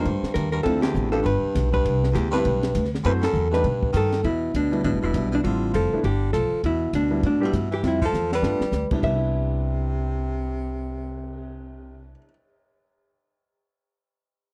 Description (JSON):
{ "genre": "jazz, small-group swing and bop", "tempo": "201 BPM", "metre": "4/4", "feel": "swing 61% on 8ths", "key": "C major", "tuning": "A4 = 439 Hz", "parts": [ { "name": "vintage hollow-body jazz guitar", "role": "melody", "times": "0.0-12.1 s", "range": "D4 to E5", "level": "-28 LUFS", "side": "equal", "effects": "none" }, { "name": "bright baritone saxophone", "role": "second line", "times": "0.0-12.1 s", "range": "E2 to G3", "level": "-33 LUFS", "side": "equal", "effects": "none" }, { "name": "warm baby grand piano", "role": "accompaniment", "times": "0.0-12.3 s", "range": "C3 to C5", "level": "-30 LUFS", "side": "equal", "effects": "none" }, { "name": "upright bass", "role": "bass", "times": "0.0-12.1 s", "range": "E1 to B2", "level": "-28 LUFS", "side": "equal", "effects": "none" }, { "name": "compact cocktail drum kit", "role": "drums", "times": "0.1-11.4 s", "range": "crash cymbal, cymbal swell, hi-hat, kick drum, ride cymbal, snare drum", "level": "-32 LUFS", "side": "equal", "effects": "none" } ], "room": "little or no reverb", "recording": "dry, close 1970s-style studio recording", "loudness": "-23 LUFS", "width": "mono", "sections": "0.0-4.2 A section; 4.2-9.0 B section; 9.0-11.4 C section", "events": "band accent 0.8, 3.2; drum fill 8.1-8.7", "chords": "0.0 Eb; 0.7 Dm9; 1.3 G; 1.9 Cmaj7sus2; 3.0 F#m7b5; 3.6 Baug7; 4.2 Em7; 4.8 A9sus4; 5.4 Dm11; 6.0 G7; 6.6 Em7; 7.2 A9sus4; 7.8 Fmaj9; 8.4 G7; 9.0 Cmaj9" }